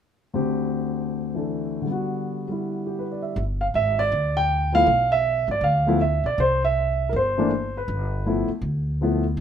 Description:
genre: jazz piano trio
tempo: 160 BPM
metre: 4/4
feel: swing 64% on 8ths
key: G major, G mixolydian from 3.4 s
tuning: A4 = 440 Hz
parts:
  - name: warm concert grand piano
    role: melody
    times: 0.3-9.2 s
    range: D2 to G5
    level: -22 LUFS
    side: equal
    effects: none
  - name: upright bass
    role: bass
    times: 3.4-9.4 s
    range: G1 to D2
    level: -25 LUFS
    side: equal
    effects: none
room: light reverb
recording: minimal, uncompressed stereo recording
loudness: -21 LUFS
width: side -8 dB against mid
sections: 0.3-3.4 A section; 3.4-9.4 B section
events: none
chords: 0.3 D7sus4; 1.9 Gmaj7/D; 3.4 G13 (rootless); 6.4 C; 7.9 G13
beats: | 0.35 0.72 1.10 1.48 | 1.86 2.24 2.61 2.99 | 3.37 3.74 4.12 4.50 | 4.87 5.25 5.62 6.00 | 6.38 6.75 7.13 7.50 | 7.88 8.25 8.63 9.01 | 9.38

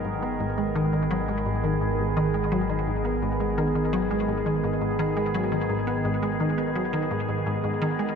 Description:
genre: ambient, sequencer-driven space music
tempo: 85 BPM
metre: 4/4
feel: straight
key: G# minor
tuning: A4 = 442 Hz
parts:
  - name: evolving wavetable pad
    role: sustained chords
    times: 0.0-8.2 s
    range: D#3 to A#4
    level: -26 LUFS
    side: right 1 dB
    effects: chorus, built-in reverb
  - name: resonant blip pluck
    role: riff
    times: 0.0-8.1 s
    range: G#2 to B3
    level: -27 LUFS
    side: left 1 dB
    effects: analog chorus, ping-pong delay
  - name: analog drone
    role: bass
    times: 0.0-8.2 s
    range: G#1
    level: -33 LUFS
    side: equal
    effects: chorus
room: wet cathedral reverb, RT60 5.4 s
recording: in a vast, echoing space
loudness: -23 LUFS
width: side -6 dB against mid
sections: 0.0-8.2 A section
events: none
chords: 0.0 G#madd9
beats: 0.40 1.11 | 1.81 2.52 3.23 3.93 | 4.64 5.34 6.05 6.75 | 7.46

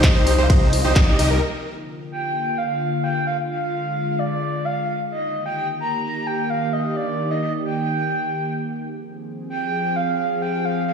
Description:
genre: EDM, festival progressive house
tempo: 130 BPM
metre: 4/4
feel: straight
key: unclear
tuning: A4 = 440 Hz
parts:
  - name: breathy flute-like synth lead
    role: melody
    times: 0.0-10.9 s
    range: D5 to Bb5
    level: -24 LUFS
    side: right 1 dB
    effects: wide subtle chorus, digital delay
  - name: lush unison pad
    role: sustained chords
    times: 0.0-10.9 s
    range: C3 to Ab4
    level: -26 LUFS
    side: left 1 dB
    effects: chorus, sidechain pumping
  - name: plucky unison lead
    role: arpeggios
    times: 0.0-1.4 s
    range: Bb4 to Eb5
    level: -25 LUFS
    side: left 1 dB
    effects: wide subtle chorus, sidechain pumping, digital delay
  - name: dense compressed supersaw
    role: riff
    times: 0.0-1.4 s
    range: Eb4 to Eb5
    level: -25 LUFS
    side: right 1 dB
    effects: sidechain pumping, low-pass filter, digital delay
  - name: detuned saw bass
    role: bass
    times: 0.0-1.4 s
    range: C2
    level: -20 LUFS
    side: equal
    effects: sidechain pumping
  - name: big-room dance drum kit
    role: drums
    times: 0.0-1.3 s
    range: handclaps, hi-hat, ride cymbal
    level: -26 LUFS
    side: equal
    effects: low-pass filter on cymbals, low-pass filter on hats, low-pass filter on snare
  - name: electronic kick drum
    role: drums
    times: 0.0-1.1 s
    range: none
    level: -15 LUFS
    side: equal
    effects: overdrive
room: moderate lush hall reverb, RT60 1.8 s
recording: played on a big sound system in a bare room, stone room reverb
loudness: -19 LUFS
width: side -6 dB against mid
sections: 0.0-1.4 A section; 1.4-10.9 B section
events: drop 0.0-1.4; band accent 1.0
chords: 0.0 Cm; 1.4 Bb; 5.1 Eb; 8.8 Fm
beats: 0.04 0.50 0.96 | 1.42 1.88 2.34 2.81 | 3.27 3.73 4.19 4.65 | 5.11 5.58 6.04 6.50 | 6.96 7.42 7.88 8.34 | 8.80 9.27 9.73 10.19 | 10.65

